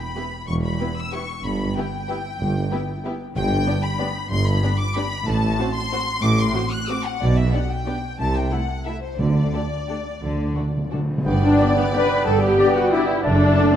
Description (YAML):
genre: classical, orchestral ballroom waltz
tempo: 166-202 BPM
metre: 3/4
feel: rubato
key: G major from 3.4 s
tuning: A4 = 440 Hz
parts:
  - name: rich symphonic violin section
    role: melody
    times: 0.0-13.7 s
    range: C5 to F#6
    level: -28 LUFS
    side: left 4 dB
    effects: none
  - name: warm symphonic violin section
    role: second line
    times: 0.2-13.8 s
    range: E4 to D5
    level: -30 LUFS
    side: left 3 dB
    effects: none
  - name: dark studio viola section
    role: accompaniment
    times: 0.2-13.8 s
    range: A3 to B4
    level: -23 LUFS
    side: equal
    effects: none
  - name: dark chamber double bass section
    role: bass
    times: 0.5-13.5 s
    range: E1 to D2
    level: -25 LUFS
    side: right 1 dB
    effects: none
  - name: mellow tuba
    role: bass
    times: 0.5-10.5 s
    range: E1 to D2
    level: -28 LUFS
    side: right 2 dB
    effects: none
  - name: warm chamber cello section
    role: bass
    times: 0.5-13.5 s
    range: E2 to D3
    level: -27 LUFS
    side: right 1 dB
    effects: none
  - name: timpani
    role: percussion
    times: 3.4-3.8, 9.2-11.2 s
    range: G2 to D3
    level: -26 LUFS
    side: right 1 dB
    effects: none
  - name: cymbal swell and tam-tam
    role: percussion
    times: 9.2-12.5 s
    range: none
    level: -33 LUFS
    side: left 2 dB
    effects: none
  - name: clear oboe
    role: second line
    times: 11.3-13.8 s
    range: G5 to A5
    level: -30 LUFS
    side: right 1 dB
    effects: none
  - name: dark clarinet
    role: second line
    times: 11.3-13.8 s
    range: D5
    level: -28 LUFS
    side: right 1 dB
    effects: none
  - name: warm bassoon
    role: accompaniment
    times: 11.3-13.8 s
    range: A3 to B3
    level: -28 LUFS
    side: equal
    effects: none
  - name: bright concert flute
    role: second line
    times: 11.4-13.8 s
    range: B4 to B5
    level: -28 LUFS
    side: left 2 dB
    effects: none
  - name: mellow French horn section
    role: sustained chords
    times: 11.6-13.7 s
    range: A3 to D4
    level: -27 LUFS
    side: left 4 dB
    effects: none
  - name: warm trumpet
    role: stabs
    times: 11.6-13.7 s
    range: D5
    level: -30 LUFS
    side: left 2 dB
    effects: none
room: moderate scoring stage reverb, RT60 1.7 s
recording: dark, warm production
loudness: -19 LUFS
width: side -10 dB against mid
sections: 0.0-11.3 A section; 11.3-13.8 B section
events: timpani fill 10.2-11.3; band accent 11.3-11.6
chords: 0.0 E5; 1.4 Em/G; 3.4 G; 5.3 F#dim/A; 7.2 G/B; 8.2 Am/C; 9.2 D5; 11.3 G; 13.2 D/F#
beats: 0.17 | 0.48 0.80 1.13 | 1.44 1.75 2.09 | 2.40 2.71 3.04 | 3.36 3.67 4.00 | 4.31 4.63 4.96 | 5.27 5.59 5.92 | 6.23 6.55 6.89 | 7.21 7.54 7.87 | 8.19 8.51 8.86 | 9.19 9.53 9.89 | 10.22 10.56 10.92 | 11.26 11.59 11.94 | 12.26 12.58 12.92 | 13.24 13.56